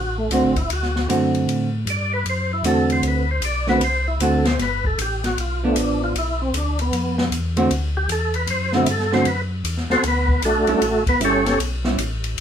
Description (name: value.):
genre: soul jazz organ trio.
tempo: 154 BPM.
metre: 4/4.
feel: swing 64% on 8ths.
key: D mixolydian.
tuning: A4 = 439 Hz.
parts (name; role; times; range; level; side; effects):
percussive tonewheel organ; melody; 0.0-11.6 s; A3 to D5; -22 LUFS; equal; slow rotary speaker, overdrive, chorus vibrato.
mellow tonewheel organ; bass; 0.0-12.4 s; F#1 to A2; -24 LUFS; left 1 dB; slow rotary speaker.
vintage hollow-body jazz guitar; accompaniment; 0.3-12.0 s; D3 to F#4; -20 LUFS; right 2 dB; none.
open jazz drum kit; drums; 0.3-12.4 s; hi-hat, kick drum, ride cymbal, snare drum; -26 LUFS; left 2 dB; none.
room: wet small room reverb, RT60 0.5 s.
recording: band playing live in one room.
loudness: -18 LUFS.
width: side -8 dB against mid.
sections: 0.0-12.4 A section.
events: tonewheel organ solo 0.0-12.4.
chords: 0.0 D7; 4.6 G7; 7.7 D7; 10.8 A7.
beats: 0.30 0.69 1.08 | 1.48 1.86 2.25 2.65 | 3.04 3.42 3.81 4.20 | 4.59 4.98 5.37 5.76 | 6.15 6.54 6.93 7.32 | 7.71 8.10 8.48 8.87 | 9.26 9.65 10.04 10.43 | 10.82 11.20 11.59 11.98 | 12.37.